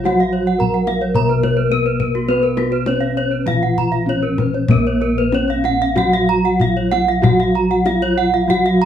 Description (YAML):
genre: Balinese gamelan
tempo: 95-112 BPM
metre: 4/4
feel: straight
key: Bb pelog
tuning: A4 = 445 Hz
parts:
  - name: gamelan-type bronze metallophone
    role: melody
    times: 0.0-8.9 s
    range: Bb3 to Bb4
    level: -20 LUFS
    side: equal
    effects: none
  - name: gamelan-type bronze metallophone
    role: accompaniment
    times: 0.0-8.9 s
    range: F3-45c to Cb4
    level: -22 LUFS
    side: right 3 dB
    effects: none
  - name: gamelan-type bronze metallophone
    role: arpeggios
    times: 0.0-8.9 s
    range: Gb4-40c to Bb5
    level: -22 LUFS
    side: right 7 dB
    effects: none
  - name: gamelan-type bossed gongs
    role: bass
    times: 0.0-8.9 s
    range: Bb1 to Cb5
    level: -22 LUFS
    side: left 2 dB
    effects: none
  - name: gamelan-type bronze metallophone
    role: arpeggios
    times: 0.1-8.8 s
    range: Gb4-40c to Bb5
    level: -21 LUFS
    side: left 4 dB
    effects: none
  - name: kendang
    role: percussion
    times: 0.1-8.7 s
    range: none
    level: -20 LUFS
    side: left 3 dB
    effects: none
room: moderate studio reverb, RT60 0.5 s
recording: studio reverb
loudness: -14 LUFS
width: side -9 dB against mid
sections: 0.0-4.7 A section; 4.7-8.9 B section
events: none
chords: none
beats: | 0.06 0.59 1.15 1.71 | 2.28 2.87 3.46 4.08 | 4.70 5.33 5.96 6.59 | 7.23 7.86 8.49